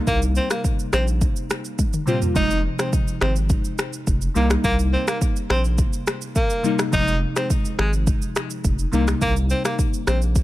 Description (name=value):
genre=afrobeats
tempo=105 BPM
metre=4/4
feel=straight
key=F minor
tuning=A4 = 440 Hz
part: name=glassy digital keys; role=accompaniment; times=0.0-10.4 s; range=C3 to F4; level=-26 LUFS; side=left 1 dB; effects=chorus
part: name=breathy tenor saxophone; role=melody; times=0.1-10.2 s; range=Ab3 to Eb4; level=-26 LUFS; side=equal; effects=ping-pong delay
part: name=saturated sub bass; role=bass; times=0.1-10.4 s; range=F1 to C2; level=-21 LUFS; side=equal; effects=none
part: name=afro-pop drum kit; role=drums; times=0.1-10.4 s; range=finger snaps, kick drum, rim click, shaker, toms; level=-22 LUFS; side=equal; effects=none
room=little or no reverb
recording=none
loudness=-19 LUFS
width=side -16 dB against mid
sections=0.0-10.4 A section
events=drum fill 1.8-2.4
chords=0.0 Cm7; 2.4 Fm7; 4.4 Cm7; 6.9 Fm7; 8.9 Cm7